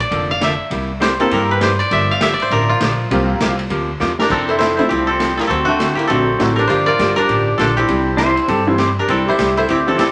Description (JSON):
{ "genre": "country, western swing", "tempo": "200 BPM", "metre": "4/4", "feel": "swing 62% on 8ths", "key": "unclear", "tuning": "A4 = 441 Hz", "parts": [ { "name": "koto", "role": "melody", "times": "0.0-10.1 s", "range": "A3 to F5", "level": "-20 LUFS", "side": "equal", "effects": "none" }, { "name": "swinging big-band drum kit", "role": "drums", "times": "0.0-10.1 s", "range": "crash cymbal, hi-hat, kick drum, ride cymbal, snare drum", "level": "-27 LUFS", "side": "equal", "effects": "none" }, { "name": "archtop guitar, miked and amplified", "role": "accompaniment", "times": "0.1-10.1 s", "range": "C3 to A4", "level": "-24 LUFS", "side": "equal", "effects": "none" }, { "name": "upright bass", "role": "bass", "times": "0.1-10.1 s", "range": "F1 to G2", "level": "-25 LUFS", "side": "equal", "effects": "none" }, { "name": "honky-tonk upright piano", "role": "accompaniment", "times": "1.2-6.6, 8.7-10.0 s", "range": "E3 to Bb4", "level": "-22 LUFS", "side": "equal", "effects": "none" }, { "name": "breathy clarinet", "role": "second line", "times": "4.2-10.1 s", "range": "D4 to Bb4", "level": "-23 LUFS", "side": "equal", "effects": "none" }, { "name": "pedal steel guitar", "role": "second line", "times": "8.2-8.9 s", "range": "C4 to C5", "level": "-19 LUFS", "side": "equal", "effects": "none" } ], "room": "wet studio ambience, RT60 0.5 s", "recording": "none", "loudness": "-16 LUFS", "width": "mono", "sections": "0.0-4.3 A section; 4.3-10.1 B section", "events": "koto solo 0.0-4.3; drum fill 4.0", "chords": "0.0 Bbmaj9#11; 0.7 C7; 1.9 Gm9; 3.1 C7sus4; 4.3 Fmaj7; 5.5 D7; 6.7 Gm7; 7.9 C" }